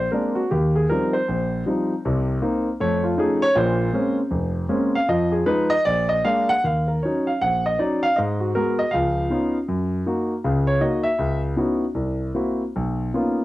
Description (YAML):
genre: solo jazz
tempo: 157 BPM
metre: 4/4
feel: swing 63% on 8ths, rubato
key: Bb minor, Eb minor from 6.6 s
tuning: A4 = 439 Hz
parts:
  - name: warm grand piano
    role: solo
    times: 0.0-13.4 s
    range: F1 to Gb5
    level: -19 LUFS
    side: equal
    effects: cassette tape
room: wet small room reverb, RT60 0.5 s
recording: home recording on cassette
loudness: -19 LUFS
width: side -16 dB against mid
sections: 0.0-6.6 A section; 6.6-13.4 A section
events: grand piano solo 0.0-13.4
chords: 0.0 Bb9; 0.5 Eb69; 2.0 Cm7; 2.8 Faug7; 3.6 Bbm9; 5.1 Fm7b5; 5.8 Bb7; 6.6 Ebm7; 8.2 Abm7; 8.9 Db9; 9.7 Gb6; 11.2 Dbm11; 12.0 C7#11; 12.7 Bmaj9#11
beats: 0.12 | 0.51 0.90 1.29 1.67 | 2.05 2.42 2.80 3.18 | 3.55 3.93 4.31 4.69 | 5.07 5.46 5.85 6.24 | 6.64 7.03 7.41 7.80 | 8.18 8.56 8.94 9.32 | 9.69 10.07 10.45 10.83 | 11.20 11.58 11.97 12.36 | 12.75 13.14